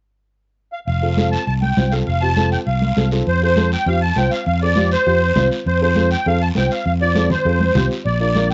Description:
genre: latin, cumbia.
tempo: 201 BPM.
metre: 4/4.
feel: straight.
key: F major.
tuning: A4 = 436 Hz.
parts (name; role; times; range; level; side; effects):
musette accordion; melody; 0.7-8.5 s; C5 to A5; -22 LUFS; equal; cassette tape.
fingered electric bass; bass; 0.9-8.5 s; F1 to F2; -21 LUFS; equal; none.
guiro; percussion; 0.9-8.5 s; none; -35 LUFS; equal; none.
dark upright piano; accompaniment; 1.0-8.5 s; C4 to C5; -26 LUFS; equal; cassette tape.
congas; percussion; 1.2-8.5 s; none; -25 LUFS; equal; none.
room: light reverb.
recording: home recording on cassette, nothing above 7.7 kHz.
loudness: -17 LUFS.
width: mono.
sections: 0.9-3.3 A section; 3.3-8.5 B section.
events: none.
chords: 0.0 N.C.; 0.9 F.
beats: 0.28 0.58 | 0.88 1.18 1.47 1.77 | 2.07 2.37 2.67 2.97 | 3.27 3.57 3.87 4.17 | 4.46 4.76 5.06 5.36 | 5.66 5.96 6.26 6.56 | 6.86 7.16 7.46 7.75 | 8.05 8.35.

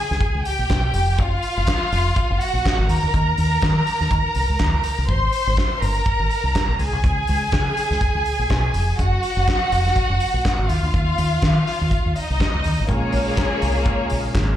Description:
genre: disco.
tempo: 123 BPM.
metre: 4/4.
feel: swing 56% on 16ths.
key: unclear.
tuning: A4 = 442 Hz.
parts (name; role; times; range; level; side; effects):
warm studio violin section; second line; 0.0-14.6 s; Bb3 to C6; -22 LUFS; equal; slapback echo.
deep dub fingered electric bass; bass; 0.1-14.5 s; F1 to Eb3; -21 LUFS; equal; none.
warm soul drum kit; drums; 0.1-14.5 s; handclaps, hi-hat, kick drum, snare drum; -23 LUFS; equal; none.
overdriven tonewheel organ; sustained chords; 12.9-14.6 s; Db3 to F4; -26 LUFS; equal; chorus vibrato, slow rotary speaker.
room: small room ambience.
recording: live gig heard through the venue's PA, club reverb.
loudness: -18 LUFS.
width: side -11 dB against mid.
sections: 0.0-12.9 A section; 12.9-14.6 B section.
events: none.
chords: 0.0 Db6; 1.2 Gbmaj7(no3); 2.9 Eb5; 5.1 Abmaj9; 6.8 Db5; 9.0 Gbmaj7(no3); 10.7 Ebsus2; 12.9 Bbm7.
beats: 0.21 0.70 | 1.19 1.68 2.16 2.65 | 3.14 3.63 4.12 4.60 | 5.09 5.58 6.07 6.55 | 7.04 7.53 8.02 8.50 | 8.99 9.48 9.96 10.45 | 10.94 11.43 11.91 12.40 | 12.89 13.38 13.86 14.35.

